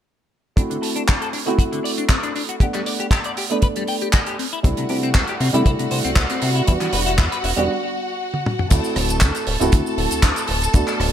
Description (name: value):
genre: nu-disco, nu disco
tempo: 118 BPM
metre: 4/4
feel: straight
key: D mixolydian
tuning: A4 = 440 Hz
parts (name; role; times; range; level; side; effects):
- dark grand piano; accompaniment; 0.6-11.1 s; G3 to F#5; -24 LUFS; right 1 dB; sidechain pumping, low-pass filter, ping-pong delay
- clean electric guitar; riff; 0.6-7.6 s; C3 to G5; -27 LUFS; left 6 dB; analog chorus, low-pass filter, ping-pong delay
- damped 70s drum kit; drums; 0.6-11.1 s; cabasa, crash cymbal, handclaps, hi-hat, rim click, toms; -24 LUFS; right 1 dB; studio reverb
- kick drum; drums; 0.6-10.8 s; none; -16 LUFS; equal; studio reverb
- warm studio string section; sustained chords; 4.6-11.1 s; F#4 to A5; -26 LUFS; equal; sidechain pumping
- chorused synth bass; bass; 4.6-11.1 s; D1 to C3; -22 LUFS; equal; none
room: light reverb, studio reverb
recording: none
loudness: -17 LUFS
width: side -10 dB against mid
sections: 0.6-8.7 A section; 8.7-11.1 B section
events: filter sweep on grand piano 0.6-8.7; break 7.7-8.7; drum fill 8.3-8.7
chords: 0.6 D7; 2.6 Gmaj7; 4.4 C6; 6.7 Em7; 8.7 D7